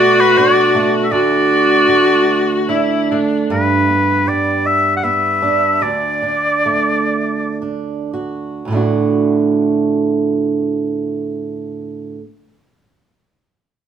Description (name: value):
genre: celtic folk, Celtic slow air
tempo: 53-83 BPM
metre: 3/4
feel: rubato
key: D major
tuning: A4 = 440 Hz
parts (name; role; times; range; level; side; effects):
- clear oboe; melody; 0.0-7.6 s; B4 to F#5; -15 LUFS; left 1 dB; none
- clear viola; second line; 0.0-3.5 s; D4 to F#4; -14 LUFS; left 2 dB; none
- fingerpicked swing-style acoustic guitar; accompaniment; 0.0-12.3 s; D2 to F#4; -17 LUFS; right 4 dB; none
room: moderate studio reverb, RT60 0.9 s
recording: band playing live in one room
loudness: -13 LUFS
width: side -8 dB against mid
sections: 0.0-3.5 A section; 3.5-8.7 B section; 8.7-12.0 C section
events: slowing down 3.5-8.7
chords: 0.0 Bm7; 1.1 D; 3.5 G6; 5.8 D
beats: 0.38 | 1.12 1.88 2.69 | 3.50 4.26 5.04 | 5.82 6.66 7.62 | 8.69 9.81 10.91